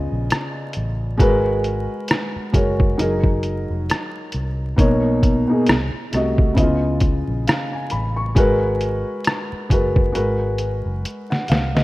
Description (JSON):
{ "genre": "lo-fi hip hop", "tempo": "67 BPM", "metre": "4/4", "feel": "swing 56% on 16ths", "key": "G# dorian", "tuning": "A4 = 441 Hz", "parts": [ { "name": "felt-muted upright piano", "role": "accompaniment", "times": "0.0-11.8 s", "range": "B2 to C#6", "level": "-21 LUFS", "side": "equal", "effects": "cassette tape" }, { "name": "vintage muted fingered electric bass", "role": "bass", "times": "0.0-11.8 s", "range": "E#1 to C#2", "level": "-24 LUFS", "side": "equal", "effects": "none" }, { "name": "trip hop sampler-style drum kit", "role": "drums", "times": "0.3-11.8 s", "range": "hi-hat, kick drum, rim click, snare drum", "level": "-19 LUFS", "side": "equal", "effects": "none" } ], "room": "light reverb, digital ambience", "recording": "rough home demo mix, vinyl crackle", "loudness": "-17 LUFS", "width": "side -18 dB against mid", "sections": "0.0-11.8 A section", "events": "drum fill 11.0-11.8", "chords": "0.0 C#9; 1.2 G#m9; 3.0 F#69; 4.8 Bmaj9; 5.7 Cdim7; 6.6 C#9; 8.4 G#m9" }